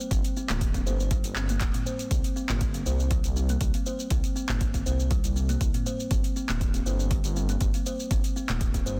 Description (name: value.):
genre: afro house.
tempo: 120 BPM.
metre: 4/4.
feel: swing 53% on 16ths.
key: unclear.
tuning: A4 = 439 Hz.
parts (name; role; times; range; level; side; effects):
afro-pop drum kit; drums; 0.0-9.0 s; handclaps, hi-hat, shaker, toms; -37 LUFS; equal; overdrive.
kalimba; arpeggios; 0.1-9.0 s; G3 to C5; -36 LUFS; equal; sidechain pumping, low-pass filter, digital delay.
dark detuned saw bass; bass; 0.1-9.0 s; D1 to C2; -31 LUFS; equal; sidechain pumping.
electronic kick drum; drums; 0.1-8.8 s; none; -30 LUFS; equal; none.
room: little or no reverb.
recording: dense, heavily limited modern master.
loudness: -27 LUFS.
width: mono.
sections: 0.0-9.0 A section.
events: none.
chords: 0.0 G5; 2.1 C5; 6.1 G5.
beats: | 0.11 0.61 1.11 1.61 | 2.11 2.61 3.11 3.61 | 4.11 4.61 5.11 5.61 | 6.11 6.61 7.11 7.61 | 8.11 8.61.